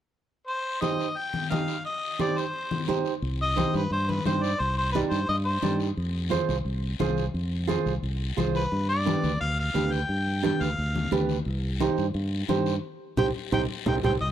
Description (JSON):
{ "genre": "latin, cumbia", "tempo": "175 BPM", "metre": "4/4", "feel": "straight", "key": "C harmonic minor", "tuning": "A4 = 440 Hz", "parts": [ { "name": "warm harmonica", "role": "melody", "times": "0.5-5.8, 8.6-14.3 s", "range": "B4 to G5", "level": "-30 LUFS", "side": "left 2 dB", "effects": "none" }, { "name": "guiro", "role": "percussion", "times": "0.5-14.3 s", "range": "none", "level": "-40 LUFS", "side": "left 13 dB", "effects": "none" }, { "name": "flamenco guitar", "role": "accompaniment", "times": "0.8-14.1 s", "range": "D4 to Eb5", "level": "-29 LUFS", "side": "right 8 dB", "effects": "none" }, { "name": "congas", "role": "percussion", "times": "0.8-14.3 s", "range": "none", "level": "-31 LUFS", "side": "left 4 dB", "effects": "none" }, { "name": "fingered electric bass", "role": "bass", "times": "3.2-14.3 s", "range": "C2 to G2", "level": "-28 LUFS", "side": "equal", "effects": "none" } ], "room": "light reverb, studio ambience", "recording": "dry, close 1970s-style studio recording, lossy compression artefacts", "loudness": "-24 LUFS", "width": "side -10 dB against mid", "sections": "0.5-3.2 A section; 3.2-14.2 B section", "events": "band accent 12.8-14.2; drum fill 13.4-14.2", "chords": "0.5 Cm; 6.0 Fm; 8.7 G7; 11.5 Cm" }